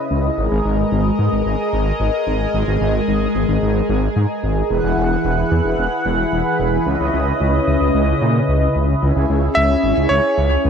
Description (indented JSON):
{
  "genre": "synthwave",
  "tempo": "111 BPM",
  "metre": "4/4",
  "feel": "straight",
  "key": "unclear",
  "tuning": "A4 = 440 Hz",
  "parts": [
    { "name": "analog string pad", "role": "sustained chords", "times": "0.0-10.7 s", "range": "C#3 to F#5", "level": "-18 LUFS", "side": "equal", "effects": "ensemble chorus" },
    { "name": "wide detuned saw bass", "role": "bass", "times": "0.1-10.7 s", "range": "E1 to A#2", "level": "-18 LUFS", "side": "equal", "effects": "chorus" },
    { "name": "warm electric grand piano", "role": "melody", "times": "9.5-10.6 s", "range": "C#5 to E5", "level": "-17 LUFS", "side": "right 1 dB", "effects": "digital delay" }
  ],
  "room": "light reverb",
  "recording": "none",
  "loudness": "-15 LUFS",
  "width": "side -7 dB against mid",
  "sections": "0.0-9.0 A section; 9.0-10.7 B section",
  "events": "none",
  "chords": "0.4 G#madd9; 4.7 Eadd9; 6.9 C#m7; 9.0 C#m"
}